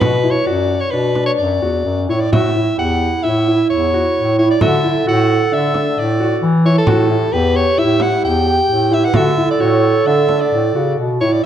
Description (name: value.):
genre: contemporary instrumental, chamber music in an uneven meter.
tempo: 132 BPM.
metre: 5/4.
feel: straight.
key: D major.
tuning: A4 = 438 Hz.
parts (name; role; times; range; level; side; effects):
clear soprano saxophone; melody; 0.0-11.4 s; A4 to G5; -18 LUFS; left 1 dB; none.
warm grand piano; arpeggios; 0.0-11.4 s; D4 to G4; -20 LUFS; equal; none.
warm bass clarinet; bass; 0.0-11.4 s; E2 to E3; -17 LUFS; equal; none.
frame drum; percussion; 0.0-11.3 s; none; -21 LUFS; right 2 dB; none.
mellow clarinet; second line; 2.3-11.2 s; E4 to B4; -20 LUFS; right 3 dB; none.
room: moderate scoring stage reverb, RT60 1.5 s.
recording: dark, warm production.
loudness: -13 LUFS.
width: side -10 dB against mid.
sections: 0.0-2.3 A section; 2.3-11.5 B section.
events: none.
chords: 0.0 Bm; 2.3 A7; 4.6 D; 6.9 A5; 9.1 Dmaj7.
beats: | 0.01 0.47 0.93 1.39 1.86 | 2.32 2.78 3.24 3.71 4.16 | 4.62 5.07 5.52 5.97 6.43 | 6.88 7.33 7.78 8.24 8.69 | 9.14 9.60 10.06 10.52 10.98.